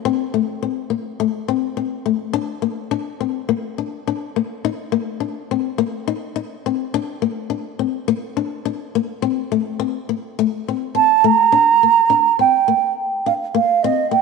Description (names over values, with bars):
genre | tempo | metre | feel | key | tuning
highlife | 105 BPM | 4/4 | straight | Bb major | A4 = 437 Hz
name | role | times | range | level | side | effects
flamenco guitar | accompaniment | 0.1-14.2 s | A3 to Eb4 | -21 LUFS | left 12 dB | none
mellow hollow concert flute | melody | 11.0-14.2 s | Eb5 to Bb5 | -13 LUFS | right 9 dB | none
room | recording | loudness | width
wet plate reverb, RT60 2.5 s | 1960s-style stereo with parts hard left and right | -17 LUFS | side -4 dB against mid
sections
0.0-11.5 A section; 11.5-14.2 B section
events
none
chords
0.1 Am; 2.4 Bb; 4.6 Eb5; 6.9 Bb; 9.2 Am; 11.5 Bb